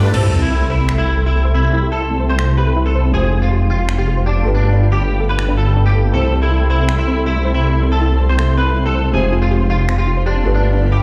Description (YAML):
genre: future bass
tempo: 160 BPM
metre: 4/4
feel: half-time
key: C major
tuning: A4 = 441 Hz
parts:
  - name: clean electric guitar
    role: melody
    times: 0.0-11.0 s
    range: D4 to C5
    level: -24 LUFS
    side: equal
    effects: ensemble chorus, tape echo
  - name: felt-muted upright piano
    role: accompaniment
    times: 0.0-11.0 s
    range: Ab3 to C5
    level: -28 LUFS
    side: equal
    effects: none
  - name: airy breathy pad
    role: sustained chords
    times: 0.0-11.0 s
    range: Ab3 to C6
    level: -31 LUFS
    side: equal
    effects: chorus
  - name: detuned saw bass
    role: bass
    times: 0.0-11.0 s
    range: F1 to G2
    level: -17 LUFS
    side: equal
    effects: chorus, tube saturation
  - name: soft round pluck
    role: arpeggios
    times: 0.1-11.0 s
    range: A3 to F5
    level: -28 LUFS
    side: equal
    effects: chorus, dub echo
  - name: big-room dance drum kit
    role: drums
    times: 0.1-10.0 s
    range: crash cymbal, finger snaps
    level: -30 LUFS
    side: equal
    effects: none
  - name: sub drop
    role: sound effects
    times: 0.1-1.6 s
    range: none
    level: -23 LUFS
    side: equal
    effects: none
room: light reverb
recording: played on a big sound system in a bare room, stone room reverb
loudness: -16 LUFS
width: mono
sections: 0.1-11.0 A section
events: impact 0.1-1.6; filter sweep on synth arpeggio sound 0.1-11.0; filter sweep on analog synth pad 0.1-11.0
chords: 0.1 C6; 3.1 Fmadd9; 4.5 G9; 6.1 C6; 9.1 Fmadd9; 10.4 G9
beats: | 0.14 0.51 0.89 1.26 | 1.64 2.01 2.39 2.76 | 3.14 3.51 3.89 4.26 | 4.64 5.01 5.39 5.76 | 6.14 6.51 6.89 7.26 | 7.64 8.01 8.39 8.76 | 9.14 9.51 9.89 10.26 | 10.64 11.01